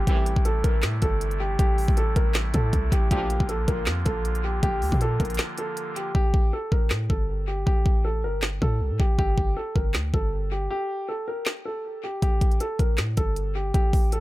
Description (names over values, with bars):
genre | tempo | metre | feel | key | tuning
hip hop, trap | 158 BPM | 4/4 | half-time | A phrygian | A4 = 440 Hz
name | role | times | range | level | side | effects
dark grand piano | melody | 0.0-14.2 s | G4 to Bb4 | -29 LUFS | equal | low-pass filter, analog delay
pipe organ, soft reed | sustained chords | 0.0-6.1 s | C3 to F4 | -34 LUFS | right 1 dB | none
hard-hitting 808-style bass | bass | 0.0-14.2 s | G1 to Bb2 | -25 LUFS | equal | none
clear brass ensemble | stabs | 0.1-0.3, 3.1-3.4 s | C2 to F3 | -38 LUFS | right 4 dB | none
trap drum kit | drums | 0.1-14.2 s | handclaps, hi-hat, kick drum, snare drum | -25 LUFS | equal | none
room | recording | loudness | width
small room reverb | echo-heavy mix | -22 LUFS | side -17 dB against mid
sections
0.0-6.1 A section; 6.1-14.2 B section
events
break 5.4-6.1, 10.7-12.2; hi-hats muted 6.1-12.2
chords
0.1 Am7; 3.1 Bb; 6.1 A7(no3); 9.2 G5; 12.2 A7(no3)